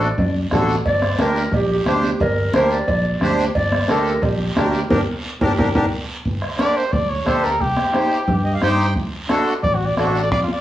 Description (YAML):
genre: latin, cumbia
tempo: 178 BPM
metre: 4/4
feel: straight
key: G harmonic minor, G minor from 6.3 s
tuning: A4 = 440 Hz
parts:
  - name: growling clarinet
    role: second line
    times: 0.0-5.8 s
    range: F#4 to D5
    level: -22 LUFS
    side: equal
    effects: none
  - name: accordion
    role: accompaniment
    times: 0.0-10.2 s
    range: D4 to G5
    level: -21 LUFS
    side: equal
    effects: none
  - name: fingered electric bass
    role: bass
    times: 0.0-10.5 s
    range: G1 to G2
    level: -23 LUFS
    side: equal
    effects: none
  - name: guiro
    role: percussion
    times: 0.0-10.6 s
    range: none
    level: -35 LUFS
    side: right 3 dB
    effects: none
  - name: bombo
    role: percussion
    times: 0.2-10.5 s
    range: none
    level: -25 LUFS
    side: right 1 dB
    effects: none
  - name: congas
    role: percussion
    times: 0.2-10.6 s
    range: none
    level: -26 LUFS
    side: left 2 dB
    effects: none
  - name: cowbell and timbales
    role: percussion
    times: 0.2-5.8 s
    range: none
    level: -26 LUFS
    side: right 3 dB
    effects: none
  - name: warm trumpet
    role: melody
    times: 6.6-10.6 s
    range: F4 to D5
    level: -20 LUFS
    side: equal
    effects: none
room: moderate large studio reverb, RT60 0.8 s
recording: worn, warbling old tape, cassette tape, warbly pitch drift, small room ambience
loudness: -16 LUFS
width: side -13 dB against mid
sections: 0.0-6.3 A section; 6.3-10.6 B section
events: clarinet solo 0.0-6.3; band accent 4.9-6.3; drum fill 5.4-6.3; trumpet solo 6.3-10.6; accordion fill 8.3-9.0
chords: 0.0 D; 0.9 Gm; 7.6 Cm; 9.0 D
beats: 0.18 0.52 | 0.86 1.19 1.53 1.87 | 2.21 2.54 2.88 3.22 | 3.56 3.90 4.23 4.57 | 4.91 5.25 5.58 5.92 | 6.26 6.60 6.94 7.27 | 7.61 7.95 8.29 8.63 | 8.96 9.30 9.64 9.98 | 10.32